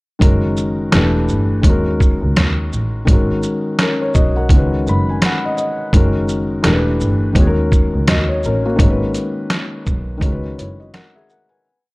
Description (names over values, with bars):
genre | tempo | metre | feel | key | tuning
lo-fi hip hop | 84 BPM | 4/4 | swing 59% on 16ths | G# minor | A4 = 440 Hz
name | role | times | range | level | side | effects
felt-muted upright piano | accompaniment | 0.2-11.8 s | D#3 to B5 | -18 LUFS | left 1 dB | none
warm double bass | bass | 0.2-10.9 s | E1 to D#2 | -18 LUFS | equal | none
trip hop sampler-style drum kit | drums | 0.2-11.5 s | hi-hat, kick drum, shaker, snare drum | -15 LUFS | equal | none
room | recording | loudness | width
light reverb | none | -13 LUFS | side -23 dB against mid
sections
0.2-11.6 A section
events
felt piano fill 4.5-5.9; fade-out 8.8-11.6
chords
0.2 F#add9; 0.9 Em7; 1.6 D#m7; 3.1 G#m9; 4.5 C#9sus4; 5.9 F#add9; 6.6 Em7; 7.4 D#m7; 8.8 G#m7; 10.2 C#9sus4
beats
| 0.21 0.93 1.64 2.36 | 3.07 3.79 4.50 5.21 | 5.93 6.64 7.36 8.07 | 8.79 9.50 10.21 10.93